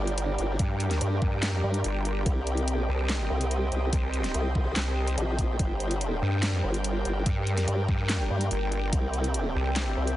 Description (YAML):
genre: heavy wobble dubstep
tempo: 144 BPM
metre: 4/4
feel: half-time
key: G minor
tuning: A4 = 440 Hz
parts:
  - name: supersaw pad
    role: sustained chords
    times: 0.0-10.2 s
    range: C3 to G5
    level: -35 LUFS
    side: equal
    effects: phaser, sidechain pumping, low-pass filter
  - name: formant-sweep wobble bass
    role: bass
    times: 0.0-10.2 s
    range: G1 to G2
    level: -27 LUFS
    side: equal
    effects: chorus, overdrive
  - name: granular cloud pad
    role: texture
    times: 0.0-10.2 s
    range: E4 to G5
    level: -35 LUFS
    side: right 1 dB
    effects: built-in reverb, sidechain pumping
  - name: dubstep drum kit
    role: drums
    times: 0.1-10.2 s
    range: handclaps, hi-hat, snare drum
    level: -32 LUFS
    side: equal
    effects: overdrive
  - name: vowel-sweep wobble bass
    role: bass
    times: 0.6-10.0 s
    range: G1 to G2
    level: -28 LUFS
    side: equal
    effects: chorus, overdrive
  - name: electronic kick drum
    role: drums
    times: 0.6-9.0 s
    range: none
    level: -27 LUFS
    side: equal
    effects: overdrive
room: digital ambience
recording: heavily compressed radio sound, multiband compression, nothing above 10.6 kHz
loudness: -25 LUFS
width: side -14 dB against mid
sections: 0.0-10.2 A section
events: none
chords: 0.0 Gm; 2.3 Cm; 5.6 Gm; 8.9 C